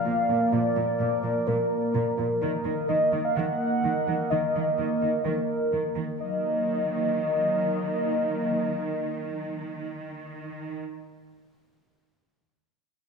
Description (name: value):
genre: cinematic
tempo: 127 BPM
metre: 4/4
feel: straight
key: Eb harmonic minor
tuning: A4 = 439 Hz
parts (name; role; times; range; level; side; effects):
- warm velvety synth lead; melody; 0.0-10.7 s; Bb4 to Gb5; -27 LUFS; left 1 dB; chorus, digital delay
- hollow soft pad; sustained chords; 0.0-10.7 s; Eb3 to Eb5; -29 LUFS; right 1 dB; chorus
- impact; sound effects; 0.0-0.5 s; none; -51 LUFS; right 1 dB; none
- warm symphonic cello section; bass; 0.1-10.7 s; Bb2 to Eb3; -32 LUFS; right 4 dB; none
room: moderate scoring stage reverb, RT60 1.8 s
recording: small room ambience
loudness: -24 LUFS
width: side -5 dB against mid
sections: 0.0-6.2 A section; 6.2-10.0 B section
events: impact 0.0-0.5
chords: 0.0 Bb; 2.4 Ebm